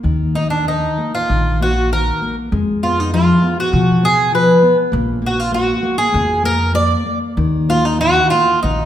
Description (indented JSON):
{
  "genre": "fado-style ballad",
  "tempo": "98 BPM",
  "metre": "4/4",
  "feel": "uneven beats, rubato",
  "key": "Eb harmonic minor",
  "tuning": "A4 = 440 Hz",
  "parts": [
    { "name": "nylon-string guitar", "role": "accompaniment", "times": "0.0-8.9 s", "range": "Eb3 to Cb4", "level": "-18 LUFS", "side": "left 2 dB", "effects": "none" },
    { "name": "upright bass", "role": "bass", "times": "0.0-8.9 s", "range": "Bb1 to Cb3", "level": "-20 LUFS", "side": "equal", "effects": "none" },
    { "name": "fingerpicked twelve-string acoustic guitar", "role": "melody", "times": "0.4-8.9 s", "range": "D4 to D5", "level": "-16 LUFS", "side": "right 1 dB", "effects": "none" }
  ],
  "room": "wet recital hall reverb, RT60 1.6 s",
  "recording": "minimal, uncompressed stereo recording",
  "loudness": "-13 LUFS",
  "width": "side -11 dB against mid",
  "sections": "0.0-8.9 A section",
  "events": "none",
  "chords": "0.0 Eb5; 2.5 Fdim; 4.9 Bb5; 7.4 Eb5",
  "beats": "| 0.03 0.67 1.30 1.92 | 2.53 3.13 3.73 4.33 | 4.93 5.52 6.13 6.75 | 7.36 7.99 8.63"
}